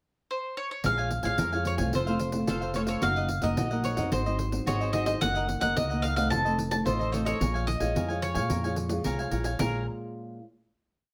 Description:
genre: samba and choro.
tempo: 110 BPM.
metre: 4/4.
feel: straight.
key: Bb minor.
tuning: A4 = 439 Hz.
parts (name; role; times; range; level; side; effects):
bowl-back mandolin; melody; 0.3-9.9 s; Bb4 to A5; -33 LUFS; equal; none.
cavaquinho; accompaniment; 0.8-9.8 s; F4 to Ab5; -37 LUFS; equal; none.
nylon-string guitar; accompaniment; 0.8-10.4 s; F2 to F4; -35 LUFS; equal; none.
upright bass; bass; 0.8-9.9 s; F1 to Bb2; -34 LUFS; equal; none.
pandeiro; percussion; 0.8-9.7 s; none; -37 LUFS; equal; none.
room: light reverb.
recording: none.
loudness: -28 LUFS.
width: mono.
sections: 0.0-0.8 pickup bar; 0.8-9.6 A section; 9.6-11.1 final chord.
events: none.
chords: 0.0 N.C.; 0.8 Bbm7; 1.9 F; 3.0 Ebm/Gb; 4.1 Ab7; 5.2 Gb6; 6.3 F7; 7.4 Bbm7.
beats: 0.29 | 0.84 1.39 1.93 2.48 | 3.03 3.58 4.12 4.67 | 5.22 5.77 6.31 6.86 | 7.41 7.96 8.51 9.05 | 9.60 10.15.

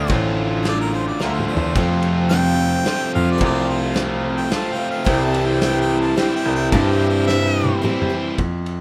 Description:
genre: folk rock and heartland rock.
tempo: 109 BPM.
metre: 3/4.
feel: straight.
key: unclear.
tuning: A4 = 440 Hz.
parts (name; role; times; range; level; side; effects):
clear harmonica; melody; 0.0-7.8 s; Bb4 to A5; -28 LUFS; equal; slapback echo.
picked twelve-string acoustic guitar; accompaniment; 0.0-8.4 s; F2 to G4; -27 LUFS; equal; none.
crunchy overdriven guitar; riff; 0.0-8.4 s; F2 to F4; -25 LUFS; equal; none.
bright concert grand piano; bass; 0.0-8.8 s; A1 to G2; -23 LUFS; equal; none.
loose indie drum kit; drums; 0.1-8.8 s; kick drum, ride cymbal, snare drum, toms; -28 LUFS; equal; none.
reed electric piano; accompaniment; 1.8-8.3 s; none; barely audible; none; none.
bright tonewheel organ; sustained chords; 1.8-8.3 s; E4 to C5; -37 LUFS; equal; none.
room: light reverb.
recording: rough home demo mix.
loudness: -19 LUFS.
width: mono.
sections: 0.0-8.4 A section.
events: harmonica solo 0.0-8.4; drum fill 1.2-1.8, 7.3-8.4.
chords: 0.0 Dm; 1.8 F; 5.1 C.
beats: | 0.10 0.66 1.21 | 1.76 2.31 2.87 | 3.42 3.97 4.52 | 5.07 5.62 6.18 | 6.73 7.28 7.83 | 8.39.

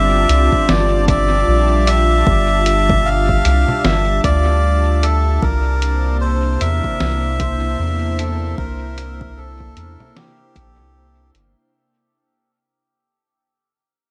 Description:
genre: ambient dub.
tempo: 76 BPM.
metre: 4/4.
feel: swing 59% on 16ths.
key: unclear.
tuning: A4 = 441 Hz.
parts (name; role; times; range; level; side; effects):
melodica; melody; 0.0-11.3 s; G4 to F5; -21 LUFS; equal; dub echo.
airy breathy pad; sustained chords; 0.0-11.7 s; C3 to A5; -26 LUFS; equal; chorus.
soft dub sub bass; bass; 0.0-11.6 s; G1 to E2; -20 LUFS; equal; none.
lo-fi sampler-style drum kit; drums; 0.3-11.5 s; congas, hi-hat, snare drum; -25 LUFS; equal; dub echo.
electronic kick drum; drums; 0.5-10.7 s; none; -23 LUFS; equal; none.
room: light reverb, digital ambience.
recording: echo-heavy mix.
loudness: -16 LUFS.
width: mono.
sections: 0.0-11.7 A section.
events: fade-out 3.3-11.7.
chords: 0.0 Gm7; 5.4 C7.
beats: 0.69 1.48 | 2.27 3.06 3.85 4.63 | 5.42 6.21 7.00 7.79 | 8.58 9.37 10.16 10.95.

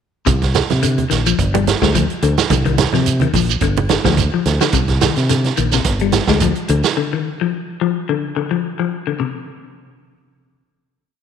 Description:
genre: afrobeat.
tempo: 108 BPM.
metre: 4/4.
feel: swing 54% on 16ths.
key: C minor.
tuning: A4 = 441 Hz.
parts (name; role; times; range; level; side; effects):
semi-hollow electric guitar; arpeggios; 0.3-9.4 s; C3 to Ab3; -20 LUFS; left 10 dB; spring reverb.
fingered electric bass; bass; 0.3-6.8 s; G1 to C3; -18 LUFS; equal; none.
vintage drum kit; drums; 0.3-7.0 s; hi-hat, kick drum, snare drum; -19 LUFS; right 6 dB; none.
congas; percussion; 0.3-4.3 s; none; -23 LUFS; right 8 dB; none.
shekere; percussion; 0.3-7.0 s; none; -24 LUFS; right 7 dB; none.
room: light reverb, small room ambience.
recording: 1960s-style stereo with parts hard left and right.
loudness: -14 LUFS.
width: side -8 dB against mid.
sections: 0.3-9.2 groove; 9.2-11.2 final chord.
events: none.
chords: 0.3 C7(no3); 1.4 G5; 2.5 Cm7; 3.6 G5; 4.7 Cm7; 5.9 G5; 7.0 Dm; 9.2 N.C..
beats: | 0.27 0.83 1.39 1.95 | 2.50 3.06 3.62 4.18 | 4.74 5.30 5.85 6.41 | 6.97 7.53 8.08 8.64 | 9.20.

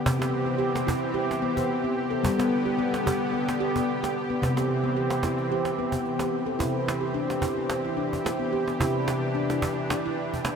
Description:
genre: world meditative, meditative tuned percussion.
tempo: 110 BPM.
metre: 4/4.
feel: swing 54% on 16ths.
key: unclear.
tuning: A4 = 440 Hz.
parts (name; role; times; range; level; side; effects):
lush unison pad; sustained chords; 0.0-10.6 s; D3 to G4; -29 LUFS; equal; chorus, shimmer reverb.
handpan; arpeggios; 0.0-10.6 s; C3 to A4; -26 LUFS; equal; analog delay, shimmer reverb.
cajon; percussion; 0.1-10.6 s; none; -33 LUFS; right 2 dB; none.
room: wet huge ambient reverb, RT60 7.9 s.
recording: dreamy mix soaked in reverb.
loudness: -24 LUFS.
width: side -6 dB against mid.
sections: 0.0-6.6 A section; 6.6-10.6 B section.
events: none.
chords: 0.1 C; 2.2 G; 4.4 C.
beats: | 0.06 0.60 1.15 1.69 | 2.24 2.78 3.33 3.87 | 4.42 4.96 5.51 6.05 | 6.60 7.15 7.70 8.24 | 8.79 9.34 9.89 10.44.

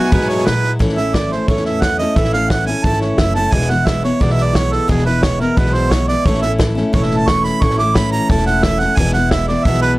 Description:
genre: honky-tonk and classic country.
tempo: 176 BPM.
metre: 4/4.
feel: straight.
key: A major.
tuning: A4 = 440 Hz.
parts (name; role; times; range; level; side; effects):
rich fiddle; melody; 0.0-0.5 s; G#5; -25 LUFS; right 1 dB; none.
clear harmonica; second line; 0.0-9.9 s; F#4 to D6; -19 LUFS; right 4 dB; none.
picked steel-string acoustic guitar; accompaniment; 0.0-10.0 s; E2 to E4; -18 LUFS; left 1 dB; none.
natural country drum kit; drums; 0.0-9.9 s; hi-hat, kick drum, snare drum; -18 LUFS; equal; none.
upright bass; bass; 0.1-10.0 s; E1 to Bb2; -20 LUFS; equal; none.
room: little or no reverb.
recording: dry, gritty hardware recording, transformer saturation.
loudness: -13 LUFS.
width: side -19 dB against mid.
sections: 0.8-10.0 A section.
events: harmonica solo 0.8-10.0.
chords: 0.0 Eadd9; 0.8 A; 3.5 E; 6.3 A; 9.0 E.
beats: 0.12 0.46 | 0.80 1.14 1.49 1.83 | 2.17 2.51 2.85 3.19 | 3.53 3.87 4.21 4.55 | 4.89 5.23 5.57 5.91 | 6.25 6.59 6.94 7.28 | 7.62 7.96 8.30 8.64 | 8.98 9.32 9.66.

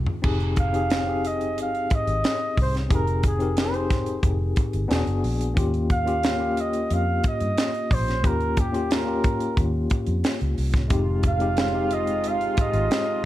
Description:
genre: lush 1970s-style soul.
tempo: 90 BPM.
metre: 4/4.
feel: straight.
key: F minor.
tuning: A4 = 441 Hz.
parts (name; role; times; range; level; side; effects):
tine electric piano; accompaniment; 0.0-13.3 s; Ab3 to Bb4; -28 LUFS; left 4 dB; medium tremolo.
vintage muted fingered electric bass; bass; 0.0-12.9 s; E1 to G2; -26 LUFS; equal; none.
tight funk drum kit; drums; 0.1-13.1 s; crash cymbal, hi-hat, kick drum, snare drum, toms; -24 LUFS; equal; none.
warm flugelhorn; melody; 0.6-13.3 s; G4 to F5; -26 LUFS; right 2 dB; slapback echo.
clear horn section; stabs; 10.9-13.3 s; C3 to F4; -30 LUFS; right 3 dB; slapback echo.
room: little or no reverb.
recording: none.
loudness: -21 LUFS.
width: side -14 dB against mid.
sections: 0.2-13.3 A section.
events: drum fill 0.0.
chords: 0.2 Fm9; 4.9 E9; 5.6 Eb7; 10.9 Fm9.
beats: | 0.24 0.91 1.57 2.24 | 2.91 3.57 4.24 4.90 | 5.57 6.24 6.90 7.57 | 8.24 8.90 9.57 10.24 | 10.90 11.57 12.23 12.90.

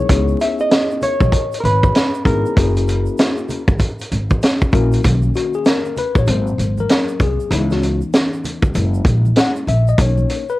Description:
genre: hip hop, jazz-hop.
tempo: 97 BPM.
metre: 4/4.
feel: swing 62% on 16ths.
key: B major.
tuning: A4 = 436 Hz.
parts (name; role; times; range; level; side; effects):
vintage hollow-body jazz guitar; melody; 0.0-4.7 s; A#4 to E5; -20 LUFS; equal; cassette tape, tape echo.
mellow tine electric piano; accompaniment; 0.0-10.6 s; D#3 to F#5; -22 LUFS; left 5 dB; medium stereo tremolo, cassette tape.
upright bass; bass; 0.0-10.2 s; F#1 to C#2; -17 LUFS; equal; none.
vintage drum kit; drums; 0.1-10.5 s; hi-hat, kick drum, snare drum; -17 LUFS; equal; cassette tape.
tube shaker and congas; percussion; 0.1-10.6 s; none; -32 LUFS; right 4 dB; none.
room: light reverb.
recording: home recording on cassette, vinyl crackle.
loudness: -14 LUFS.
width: side -17 dB against mid.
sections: 0.0-5.0 A section; 5.0-10.6 B section.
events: tine electric piano solo 5.0-10.6.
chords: 0.1 C#m9; 2.6 F#9; 5.0 Bmaj7; 6.3 G#7; 7.5 C#m7; 8.7 F#7; 10.0 Bmaj7.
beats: | 0.09 0.71 1.33 1.95 | 2.56 3.18 3.80 4.42 | 5.04 5.66 6.28 6.89 | 7.51 8.13 8.75 9.37 | 9.99.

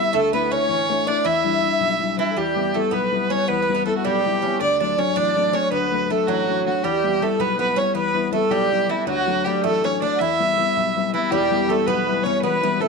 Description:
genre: celtic folk, Celtic jig.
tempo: 107 BPM (dotted quarters).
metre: 6/8.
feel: straight.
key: E dorian.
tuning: A4 = 440 Hz.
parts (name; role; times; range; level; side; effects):
clear fiddle; melody; 0.0-12.9 s; E4 to E5; -22 LUFS; right 1 dB; none.
Irish bouzouki; second line; 0.0-12.9 s; E3 to E4; -24 LUFS; right 15 dB; none.
mellow wooden flute; second line; 0.0-12.9 s; E4 to F#5; -28 LUFS; left 9 dB; tape echo.
dark upright piano; accompaniment; 0.0-12.9 s; E1 to E4; -24 LUFS; left 12 dB; none.
room: moderate plate reverb, RT60 2.3 s.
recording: 1960s-style stereo with parts hard left and right.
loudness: -18 LUFS.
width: side -4 dB against mid.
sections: 0.0-2.4 A section; 2.4-11.3 B section; 11.3-12.9 B section.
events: none.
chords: 0.1 Dsus2; 1.2 Em7; 2.4 Em; 4.6 D; 6.8 Em; 9.1 D; 10.2 Em.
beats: | 0.12 0.68 | 1.24 1.80 | 2.36 2.92 | 3.48 4.04 | 4.60 5.16 | 5.72 6.28 | 6.84 7.40 | 7.96 8.52 | 9.08 9.63 | 10.20 10.75 | 11.31 11.87 | 12.43.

